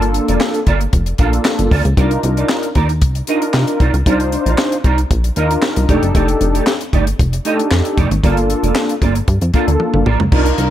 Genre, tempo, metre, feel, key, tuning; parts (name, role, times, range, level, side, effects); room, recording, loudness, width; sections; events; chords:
early-eighties boogie funk; 115 BPM; 4/4; straight; C dorian; A4 = 440 Hz
mellow synth brass; accompaniment; 0.0-10.7 s; Bb3 to C5; -18 LUFS; left 1 dB; chorus
mellow electric guitar; riff; 0.0-10.6 s; A3 to F5; -22 LUFS; right 5 dB; ensemble chorus
plucky analog bass; bass; 0.0-10.7 s; F1 to C3; -16 LUFS; equal
tight funk drum kit; drums; 0.0-10.7 s; crash cymbal, handclaps, hi-hat, kick drum, snare drum, toms; -17 LUFS; equal
little or no reverb; -13 LUFS; side -12 dB against mid
0.0-10.3 A section
drum fill 9.8-10.3
0.0 Gm9; 2.0 Cm11; 5.9 F13; 8.2 Gm9